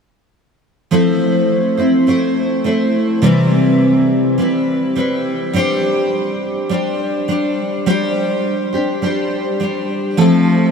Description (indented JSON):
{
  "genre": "pop",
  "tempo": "104 BPM",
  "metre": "4/4",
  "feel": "straight",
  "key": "unclear",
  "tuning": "A4 = 440 Hz",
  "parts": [
    { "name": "picked steel-string acoustic guitar", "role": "accompaniment", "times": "0.9-10.7 s", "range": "C3 to C5", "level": "-14 LUFS", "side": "equal", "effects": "double-tracked left and right" },
    { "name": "rich cello", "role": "melody", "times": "10.2-10.7 s", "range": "F3", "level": "-15 LUFS", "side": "left 3 dB", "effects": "none" }
  ],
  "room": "wet huge ambient reverb, RT60 4.8 s",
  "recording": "dreamy mix soaked in reverb",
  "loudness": "-14 LUFS",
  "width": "side -6 dB against mid",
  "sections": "0.9-10.2 A section",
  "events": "none",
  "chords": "0.9 Fmaj7; 3.2 Cmaj7; 5.5 Gsus4; 10.2 Fmaj7",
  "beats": "| 0.91 1.49 2.07 2.65 | 3.23 3.81 4.38 4.96 | 5.54 6.12 6.70 7.28 | 7.86 8.44 9.02 9.60 | 10.18"
}